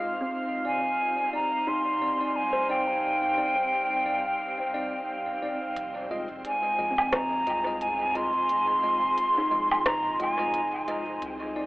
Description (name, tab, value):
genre	ambient dub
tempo	88 BPM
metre	4/4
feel	swing 58% on 16ths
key	F dorian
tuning	A4 = 440 Hz
part	soft additive organ-like pad	sustained chords	0.0-11.7 s	G3 to C5	-39 LUFS	equal	ensemble chorus, built-in reverb
part	bell-like tine electric piano	stabs	0.0-11.7 s	Ab3 to Eb5	-36 LUFS	left 1 dB	fast stereo tremolo, dub echo
part	drifting glass-harmonics texture	texture	0.0-5.8 s	F5	-35 LUFS	right 1 dB	chorus, built-in reverb
part	kalimba	arpeggios	0.2-11.3 s	C4 to C5	-36 LUFS	equal	vintage 12-bit sampler grit, dub echo
part	hollow concert flute	melody	0.7-10.8 s	G5 to C6	-26 LUFS	equal	dub echo
part	soft dub sub bass	bass	5.8-11.7 s	F1 to C2	-49 LUFS	equal	tube saturation
part	organic electronic drum kit	drums	5.8-11.4 s	hi-hat, rim click, woodblock	-32 LUFS	equal	overdrive, dub echo
part	electronic kick drum	drums	7.1-10.0 s	none	-32 LUFS	equal	overdrive
room	moderate echo chamber reverb, RT60 1.6 s, digital ambience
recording	echo-heavy mix, telephone sound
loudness	-24 LUFS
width	side -21 dB against mid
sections	0.0-5.8 A section; 5.8-11.7 B section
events	none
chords	0.3 Cmadd9; 5.8 Fm7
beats	| 0.31 0.99 1.67 2.36 | 3.04 3.72 4.40 5.08 | 5.76 6.45 7.13 7.81 | 8.49 9.17 9.86 10.54 | 11.22